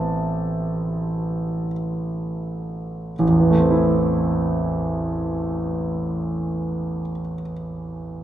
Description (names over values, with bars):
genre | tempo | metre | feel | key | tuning
classical, impressionist solo piano | 39-46 BPM | 3/4 | rubato | A minor | A4 = 440 Hz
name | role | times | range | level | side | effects
clear concert grand piano | solo | 0.0-8.2 s | A1 to A5 | -21 LUFS | right 1 dB | none
room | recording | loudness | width
wet concert hall reverb, RT60 2.1 s | none | -21 LUFS | side -12 dB against mid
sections
0.0-3.2 A section; 3.2-7.4 B section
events
slowing down 0.0-3.2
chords
0.0 Am9; 3.2 Am